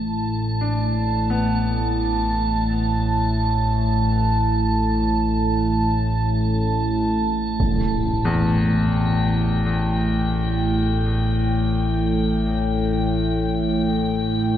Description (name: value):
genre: dark ambient drone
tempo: free time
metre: none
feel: none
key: unclear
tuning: A4 = 441 Hz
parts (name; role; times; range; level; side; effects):
- bright grand piano; arpeggios; 0.0-14.6 s; E2 to D4; -30 LUFS; left 3 dB; diffuse ambient delay
- analog drone; drone; 0.0-14.6 s; A1 to A2; -20 LUFS; equal; chorus
- icy glass pad; texture; 0.0-14.6 s; G5 to A5; -26 LUFS; right 3 dB; chorus, built-in reverb
- impact; percussion; 7.6-7.8 s; none; -30 LUFS; equal; none
room: wet cathedral reverb, RT60 6.0 s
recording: in a vast, echoing space, nothing above 7.6 kHz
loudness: -18 LUFS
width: side -11 dB against mid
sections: 0.0-14.6 A section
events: fade-in on grand piano 0.0-14.6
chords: 0.0 Am; 7.6 A7(no3)